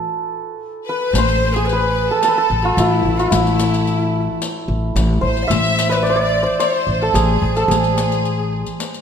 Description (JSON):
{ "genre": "Persian modal ensemble", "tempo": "110 BPM", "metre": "4/4", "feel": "straight", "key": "A avaz esfahan", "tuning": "A4 = 440 Hz", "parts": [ { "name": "santur", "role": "melody", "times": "0.0-9.0 s", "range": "E4 to E5", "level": "-19 LUFS", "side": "right 2 dB", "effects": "none" }, { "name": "breathy bright ney", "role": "second line", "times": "0.9-8.7 s", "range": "E4 to F#5-49c", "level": "-24 LUFS", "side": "left 4 dB", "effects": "none" }, { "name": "bright symphonic violin section", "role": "second line", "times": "0.9-8.7 s", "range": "E4 to E5", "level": "-24 LUFS", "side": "left 1 dB", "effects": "none" }, { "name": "upright bass", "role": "bass", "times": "1.1-8.6 s", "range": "A1", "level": "-19 LUFS", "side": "left 1 dB", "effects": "none" }, { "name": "riq", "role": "percussion", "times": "1.1-9.0 s", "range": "none", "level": "-26 LUFS", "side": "left 6 dB", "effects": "none" } ], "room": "wet recital hall reverb, RT60 1.5 s", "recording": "none", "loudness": "-15 LUFS", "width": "side -7 dB against mid", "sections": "0.0-1.1 A section; 1.1-9.0 B section", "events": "break 0.0-1.1", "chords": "none" }